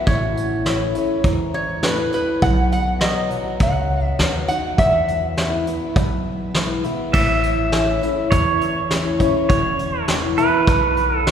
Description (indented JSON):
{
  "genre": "honky-tonk and classic country",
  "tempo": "102 BPM",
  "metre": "4/4",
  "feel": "straight",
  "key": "unclear",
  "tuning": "A4 = 440 Hz",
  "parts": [
    { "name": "lap resonator guitar", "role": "melody", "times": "0.0-6.5 s", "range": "B4 to F#5", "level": "-22 LUFS", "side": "equal", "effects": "none" },
    { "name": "picked old ladder-braced acoustic guitar", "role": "accompaniment", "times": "0.0-11.3 s", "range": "E2 to F#4", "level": "-23 LUFS", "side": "left 2 dB", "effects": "none" },
    { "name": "upright bass", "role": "bass", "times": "0.1-11.3 s", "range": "E1 to E2", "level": "-24 LUFS", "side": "equal", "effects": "none" },
    { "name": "vintage brush drum kit", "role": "drums", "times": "0.1-11.3 s", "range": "crash cymbal, hi-hat, kick drum, snare drum", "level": "-22 LUFS", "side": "equal", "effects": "none" },
    { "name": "pedal steel guitar", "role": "second line", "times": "7.1-11.3 s", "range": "B4 to E5", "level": "-20 LUFS", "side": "right 3 dB", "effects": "none" }
  ],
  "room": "wet church reverb, RT60 3.8 s",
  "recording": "recorded in a church or concert hall",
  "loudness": "-17 LUFS",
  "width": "side -8 dB against mid",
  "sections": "0.0-7.1 A section; 7.1-11.3 B section",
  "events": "pedal steel guitar solo 7.1-11.3",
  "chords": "0.1 A; 2.4 B; 4.8 E; 7.1 A; 9.5 E"
}